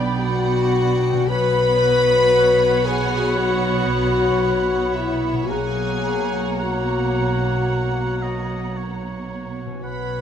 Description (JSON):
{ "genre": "cinematic, emotional film score for orchestra", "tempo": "54-58 BPM", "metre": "4/4", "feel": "rubato", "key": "unclear", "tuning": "A4 = 440 Hz", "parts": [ { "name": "clear oboe", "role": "second line", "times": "0.0-10.2 s", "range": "C#5 to G5", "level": "-32 LUFS", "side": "right 3 dB", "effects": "none" }, { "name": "dark studio violin section", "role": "second line", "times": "0.0-10.2 s", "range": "C#5 to G5", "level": "-32 LUFS", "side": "left 1 dB", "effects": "none" }, { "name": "mellow clarinet", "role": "second line", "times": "0.0-10.2 s", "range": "C#5 to D5", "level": "-34 LUFS", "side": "right 2 dB", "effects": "none" }, { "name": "mellow hollow small flute group", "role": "second line", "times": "0.0-10.2 s", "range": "A#5 to B5", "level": "-30 LUFS", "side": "right 4 dB", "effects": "none" }, { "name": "dark studio viola section", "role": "accompaniment", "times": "0.0-10.2 s", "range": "A#3 to F#4", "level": "-29 LUFS", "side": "right 1 dB", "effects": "none" }, { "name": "concert harp", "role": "arpeggios", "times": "0.0-10.2 s", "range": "B2 to C#5", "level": "-33 LUFS", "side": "left 7 dB", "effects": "none" }, { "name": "warm studio cello section", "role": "bass", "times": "0.0-10.2 s", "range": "B2", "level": "-29 LUFS", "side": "right 4 dB", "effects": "none" }, { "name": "warm studio double bass section", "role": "bass", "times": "0.0-10.2 s", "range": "B1", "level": "-26 LUFS", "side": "right 4 dB", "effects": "none" }, { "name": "warm studio violin section", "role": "melody", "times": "0.2-10.2 s", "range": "E5 to B5", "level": "-31 LUFS", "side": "left 1 dB", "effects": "none" }, { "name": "mellow French horn section", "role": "sustained chords", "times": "0.2-10.2 s", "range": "E4 to B4", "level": "-20 LUFS", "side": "left 4 dB", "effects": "none" } ], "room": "moderate scoring stage reverb, RT60 1.7 s", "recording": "none", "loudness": "-17 LUFS", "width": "side -8 dB against mid", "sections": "0.0-10.2 A section", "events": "none", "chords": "0.0 G/B; 1.3 Bsus2; 5.5 F#/B" }